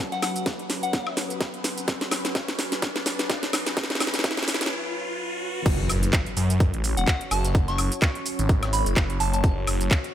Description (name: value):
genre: bass house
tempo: 127 BPM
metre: 4/4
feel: swing 56% on 16ths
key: unclear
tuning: A4 = 439 Hz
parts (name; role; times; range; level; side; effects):
- deep dark ambient pad; sustained chords; 0.0-10.1 s; F#3 to C#5; -34 LUFS; equal; chorus, built-in reverb, sidechain pumping
- riser and impact; sound effects; 0.1-7.5 s; none; -34 LUFS; equal; none
- soft synth bell; melody; 0.1-1.2, 7.0-9.4 s; F#5 to C#6; -31 LUFS; equal; chorus, phaser, tape echo
- dusty soul sampler-style drum kit; drums; 0.1-10.1 s; hi-hat, snare drum; -39 LUFS; right 1 dB; none
- house drum kit; drums; 0.1-10.1 s; crash cymbal, handclaps, hi-hat, shaker, snare drum, woodblock; -27 LUFS; equal; none
- electronic kick drum; drums; 0.5-10.0 s; none; -24 LUFS; equal; none
- phased detuned saw bass; bass; 5.7-9.9 s; E1 to F#2; -24 LUFS; equal; phaser, overdrive, sidechain pumping
room: light reverb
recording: high-pass filter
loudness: -22 LUFS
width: side -11 dB against mid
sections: 0.0-5.7 A section; 5.7-10.1 B section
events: build-up 0.0-5.7; drum fill 0.0-4.7; riser 0.1-5.7; break 4.7-5.7; drop 5.7-10.1; impact 5.7-7.5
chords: 0.0 F#5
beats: 0.46 0.93 1.41 | 1.88 2.35 2.82 3.30 | 3.77 4.24 4.71 5.18 | 5.66 6.13 6.60 7.08 | 7.55 8.02 8.49 8.96 | 9.44 9.91